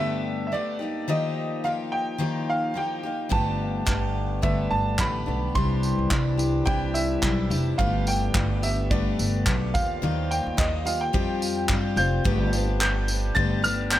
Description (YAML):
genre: acoustic pop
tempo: 107 BPM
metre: 4/4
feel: swing 55% on 16ths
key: G mixolydian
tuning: A4 = 443 Hz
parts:
  - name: clear upright piano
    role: melody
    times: 0.0-14.0 s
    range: D5 to A6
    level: -29 LUFS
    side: right 1 dB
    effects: tape echo
  - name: picked steel-string acoustic guitar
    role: accompaniment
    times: 0.0-14.0 s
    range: G2 to G4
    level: -27 LUFS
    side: left 3 dB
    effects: tape echo
  - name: pedal harmonium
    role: sustained chords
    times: 3.3-14.0 s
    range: D3 to A5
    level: -37 LUFS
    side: right 1 dB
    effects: none
  - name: upright bass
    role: bass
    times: 3.3-14.0 s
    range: F1 to G2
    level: -27 LUFS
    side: right 1 dB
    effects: none
  - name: natural country drum kit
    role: drums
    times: 3.3-14.0 s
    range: handclaps, kick drum, tambourine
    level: -27 LUFS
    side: right 1 dB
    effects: none
room: light reverb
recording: echo-heavy mix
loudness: -22 LUFS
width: side -13 dB against mid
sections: 0.0-12.3 A section; 12.3-14.0 B section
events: none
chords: 0.0 Gadd9; 0.8 Ebadd9; 3.3 Gadd9; 5.6 Cadd9; 7.8 Gadd9; 9.7 Ebadd9; 11.1 Fsus2; 12.3 Gadd9